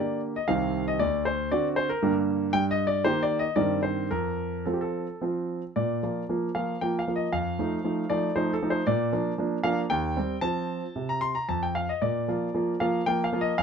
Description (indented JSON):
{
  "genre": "classical-period piano sonatina",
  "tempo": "115 BPM",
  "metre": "3/4",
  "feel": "rubato",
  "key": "Bb major",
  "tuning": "A4 = 440 Hz",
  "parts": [
    { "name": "clear concert grand piano", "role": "solo", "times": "0.0-13.6 s", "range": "C2 to C6", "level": "-25 LUFS", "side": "equal", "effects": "none" }
  ],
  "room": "little or no reverb",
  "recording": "close, detailed microphones",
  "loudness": "-25 LUFS",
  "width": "side -6 dB against mid",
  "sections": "0.0-5.8 A section; 5.8-13.6 B section",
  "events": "none",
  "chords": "0.5 Cm; 1.0 D7; 2.0 Gm; 2.5 Eb/G; 4.1 F; 5.8 Bb; 7.3 F7; 8.9 Bb; 9.9 Cm/Eb; 10.4 F; 12.0 Bb",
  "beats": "0.49 | 1.01 1.51 2.02 | 2.53 3.04 3.57 | 4.11 4.66 5.21 | 5.76 6.29 6.81 | 7.33 7.85 8.36 | 8.87 9.38 9.90 | 10.43 10.96 11.49 | 12.03 12.55 13.08 | 13.60"
}